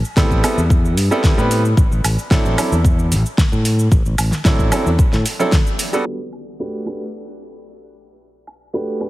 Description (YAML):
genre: nu-disco, nu disco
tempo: 112 BPM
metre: 4/4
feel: straight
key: G major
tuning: A4 = 439 Hz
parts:
  - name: fingered electric bass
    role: bass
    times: 0.0-5.2 s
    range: A1 to A2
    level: -17 LUFS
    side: equal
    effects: none
  - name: pop drum kit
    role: drums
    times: 0.0-9.1 s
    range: hi-hat, shaker, snare drum, woodblock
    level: -22 LUFS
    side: equal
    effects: none
  - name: bright baby grand piano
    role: accompaniment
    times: 0.2-9.1 s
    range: F#3 to B4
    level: -21 LUFS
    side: right 1 dB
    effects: dub echo
  - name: electronic kick drum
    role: drums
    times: 0.2-5.6 s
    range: none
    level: -15 LUFS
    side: equal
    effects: none
room: light reverb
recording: heavily compressed radio sound, low-pass filter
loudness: -14 LUFS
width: side -17 dB against mid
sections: 0.0-6.1 A section; 6.1-9.1 B section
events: filter sweep 6.1-9.1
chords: 0.0 Am9; 1.8 D9/A; 6.1 Gmaj9